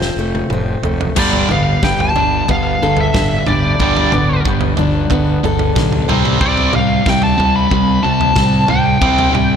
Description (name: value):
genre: quiet-loud alternative rock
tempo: 92 BPM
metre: 4/4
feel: straight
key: G mixolydian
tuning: A4 = 440 Hz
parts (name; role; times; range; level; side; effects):
- fingerpicked steel-string acoustic guitar; arpeggios; 0.0-6.4 s; F2 to A4; -21 LUFS; left 1 dB; slapback echo
- fuzz fingered electric bass; bass; 0.0-9.6 s; F1 to C2; -20 LUFS; equal; overdrive
- loose indie drum kit; drums; 0.0-9.5 s; crash cymbal, kick drum, snare drum, toms; -18 LUFS; equal; none
- biting lead guitar; melody; 1.2-9.6 s; D5 to B5; -17 LUFS; equal; overdrive, slapback echo
- distorted electric guitar; riff; 1.2-9.6 s; G2 to C4; -19 LUFS; right 12 dB; overdrive
- fuzz guitar; riff; 1.2-9.6 s; G2 to C4; -19 LUFS; left 10 dB; distortion
room: moderate lush hall reverb, RT60 2.1 s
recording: big arena sound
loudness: -12 LUFS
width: side -7 dB against mid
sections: 0.0-1.2 A section; 1.2-9.6 B section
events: drum fill 0.0-1.2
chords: 0.0 F; 1.2 Gadd9; 6.1 C5